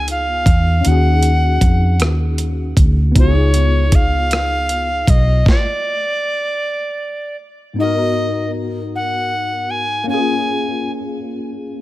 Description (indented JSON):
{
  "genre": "slow six-eight R&B",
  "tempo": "52 BPM (dotted quarters)",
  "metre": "6/8",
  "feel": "straight",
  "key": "unclear",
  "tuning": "A4 = 440 Hz",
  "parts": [
    { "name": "bright reedy soprano recorder", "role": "melody", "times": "0.0-10.9 s", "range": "Db5 to Ab5", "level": "-20 LUFS", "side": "equal", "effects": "none" },
    { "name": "tine electric piano", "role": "accompaniment", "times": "0.0-11.8 s", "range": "Ab2 to Bb4", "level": "-22 LUFS", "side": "left 2 dB", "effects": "ensemble chorus" },
    { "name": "vintage muted fingered electric bass", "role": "bass", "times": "0.0-5.4 s", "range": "Cb2 to F2", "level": "-15 LUFS", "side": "equal", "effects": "none" },
    { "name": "dusty soul sampler-style drum kit", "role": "drums", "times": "0.1-5.7 s", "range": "hi-hat, kick drum, rim click, snare drum", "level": "-14 LUFS", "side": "equal", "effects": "overdrive" }
  ],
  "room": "little or no reverb",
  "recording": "none",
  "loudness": "-14 LUFS",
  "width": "side -16 dB against mid",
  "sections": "0.0-7.8 A section; 7.8-11.8 B section",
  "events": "stop 5.5-7.8",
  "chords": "0.0 Db9; 0.8 Ebm11; 3.2 Db9; 5.5 N.C.; 7.8 Abm9; 10.1 Bbm7"
}